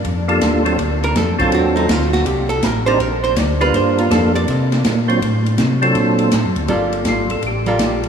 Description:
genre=soul jazz organ trio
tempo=162 BPM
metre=4/4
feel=swing 66% on 8ths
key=G minor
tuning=A4 = 440 Hz
part: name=mellow tonewheel organ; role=bass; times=0.0-8.1 s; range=G1 to C3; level=-20 LUFS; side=equal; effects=overdrive, chorus vibrato, slow rotary speaker
part: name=swinging big-band drum kit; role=drums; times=0.0-8.1 s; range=hi-hat, kick drum, ride cymbal, snare drum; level=-21 LUFS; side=equal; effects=none
part: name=percussive tonewheel organ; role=melody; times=0.3-8.0 s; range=F#3 to C5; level=-19 LUFS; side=right 1 dB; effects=slow rotary speaker, chorus vibrato
part: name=archtop guitar, miked and amplified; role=accompaniment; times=1.0-8.1 s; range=G3 to Eb5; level=-20 LUFS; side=right 2 dB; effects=none
room=wet cathedral reverb, RT60 5.4 s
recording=in a vast, echoing space, small room ambience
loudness=-14 LUFS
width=side -7 dB against mid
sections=0.0-6.7 A section; 6.7-8.1 A section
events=hollow-body jazz guitar solo 0.0-6.7; tonewheel organ solo 6.7-8.1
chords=0.0 Gm9; 0.8 D7#9; 2.3 C7sus2; 3.7 Gm9; 4.5 Csus2; 5.2 D7#9; 6.7 Gm9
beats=0.05 0.41 | 0.78 1.15 1.52 1.89 | 2.26 2.63 3.00 3.37 | 3.73 4.10 4.47 4.84 | 5.21 5.58 5.95 6.32 | 6.69 7.06 7.43 7.80

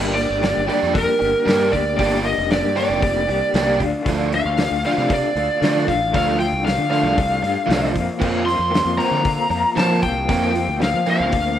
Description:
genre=indie rock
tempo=115 BPM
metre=4/4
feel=straight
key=G minor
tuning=A4 = 440 Hz
part: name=electric guitar through a small old amp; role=riff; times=0.0-11.6 s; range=F2 to G4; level=-25 LUFS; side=left 6 dB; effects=tremolo
part: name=overdriven electric guitar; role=riff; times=0.0-11.4 s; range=F3 to G4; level=-24 LUFS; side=right 6 dB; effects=ensemble chorus
part: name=fuzz fingered electric bass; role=bass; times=0.0-11.6 s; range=F1 to F3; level=-24 LUFS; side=equal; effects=overdrive
part: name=lead guitar through a small cranked amp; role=melody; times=0.1-11.6 s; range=Bb4 to C6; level=-20 LUFS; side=equal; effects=overdrive
part: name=loose indie drum kit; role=drums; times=0.2-11.5 s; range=crash cymbal, hi-hat, kick drum, snare drum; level=-25 LUFS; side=left 1 dB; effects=none
room=light reverb, studio reverb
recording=rough home demo mix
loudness=-16 LUFS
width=side -10 dB against mid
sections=0.0-11.6 A section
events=none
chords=0.0 Gm; 3.8 Dm; 8.0 Fsus4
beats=0.42 0.94 1.46 | 1.98 2.50 3.02 3.54 | 4.06 4.58 5.10 5.62 | 6.14 6.66 7.18 7.70 | 8.22 8.74 9.26 9.78 | 10.30 10.82 11.34

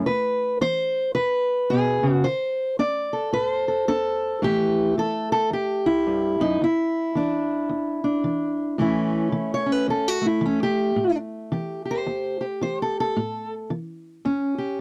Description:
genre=acoustic country blues, solo or duo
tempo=110 BPM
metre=4/4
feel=swing 60% on 8ths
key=unclear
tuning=A4 = 440 Hz
part: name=fingerpicked steel-string acoustic guitar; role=solo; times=0.0-14.8 s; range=E2 to D5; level=-24 LUFS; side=equal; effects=none
room=light reverb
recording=dry, close 1970s-style studio recording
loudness=-24 LUFS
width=mono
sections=0.0-8.8 A section; 8.8-14.8 B section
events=steel-string acoustic guitar solo 8.8-14.8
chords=0.1 E; 2.2 D5; 4.4 A5; 6.6 Dsus2/E; 8.8 A7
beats=| 0.06 0.60 1.15 1.69 | 2.24 2.79 3.33 3.88 | 4.42 4.97 5.52 6.06 | 6.61 7.16 7.70 8.25 | 8.79 9.34 9.88 10.43 | 10.98 11.52 12.07 12.61 | 13.16 13.70 14.25 14.79

